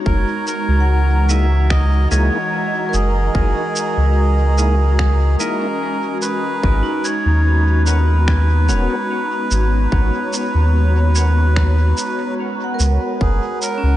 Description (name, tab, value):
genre	ambient dub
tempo	73 BPM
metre	4/4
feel	straight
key	G# minor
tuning	A4 = 440 Hz
part	airy breathy pad	sustained chords	0.0-14.0 s	E3 to A#5	-24 LUFS	left 1 dB	chorus
part	vibraphone with medium hard mallets	arpeggios	0.0-14.0 s	C#4 to F#5	-27 LUFS	right 2 dB	vintage 12-bit sampler grit, dub echo
part	melodica	melody	0.1-14.0 s	G#4 to E5	-23 LUFS	right 1 dB	dub echo
part	soft dub sub bass	bass	0.1-14.0 s	D#1 to D#2	-14 LUFS	equal	none
part	electronic kick drum	drums	0.1-13.4 s	none	-20 LUFS	equal	overdrive
part	electronic shaker and finger snaps	drums	0.5-13.8 s	none	-26 LUFS	right 2 dB	none
part	percussive tonewheel organ	stabs	1.3-11.3 s	A#3 to A#4	-30 LUFS	left 3 dB	none
room	light reverb, digital ambience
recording	nothing above 10.3 kHz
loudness	-14 LUFS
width	side -14 dB against mid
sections	0.0-14.0 A section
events	none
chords	0.1 F#13; 6.6 G#m11; 13.2 F#9